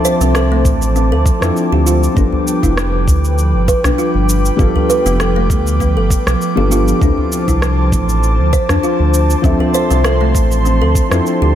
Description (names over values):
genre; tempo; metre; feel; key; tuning
organic downtempo; 99 BPM; 4/4; swing 54% on 16ths; D dorian; A4 = 440 Hz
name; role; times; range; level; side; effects
felt-muted upright piano; accompaniment; 0.0-11.6 s; F3 to E5; -20 LUFS; left 3 dB; sidechain pumping, ping-pong delay
airy breathy pad; sustained chords; 0.0-11.6 s; F3 to D6; -19 LUFS; right 1 dB; chorus, sidechain pumping
kalimba; arpeggios; 0.0-11.5 s; A3 to C5; -19 LUFS; equal; ping-pong delay
electronic shaker and rim click; drums; 0.1-11.4 s; none; -23 LUFS; right 1 dB; none
round analog bass; bass; 0.2-11.6 s; F1 to F2; -14 LUFS; equal; none
electronic kick drum; drums; 0.7-11.1 s; none; -15 LUFS; equal; none
udu; percussion; 0.7-10.5 s; none; -22 LUFS; equal; none
room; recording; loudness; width
light reverb; none; -11 LUFS; side -11 dB against mid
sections
0.0-11.6 A section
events
none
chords
0.0 Dm7; 2.2 G7; 7.0 Dm7